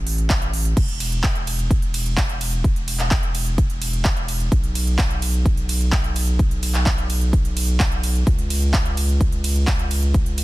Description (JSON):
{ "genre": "EDM, festival progressive house", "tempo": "128 BPM", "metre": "4/4", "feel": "straight", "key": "unclear", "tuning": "A4 = 441 Hz", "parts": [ { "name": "saturated sub bass", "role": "bass", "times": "0.0-10.4 s", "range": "E1 to C#2", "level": "-22 LUFS", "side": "equal", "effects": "sidechain pumping" }, { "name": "big-room dance drum kit", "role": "drums", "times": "0.1-10.4 s", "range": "crash cymbal, handclaps, hi-hat, ride cymbal", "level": "-25 LUFS", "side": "right 1 dB", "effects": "overdrive" }, { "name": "electronic kick drum", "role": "drums", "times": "0.3-10.2 s", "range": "none", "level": "-20 LUFS", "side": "equal", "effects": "none" } ], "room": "little or no reverb", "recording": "dense, heavily limited modern master", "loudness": "-18 LUFS", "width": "side -18 dB against mid", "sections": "0.0-10.4 A section", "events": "none", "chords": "none" }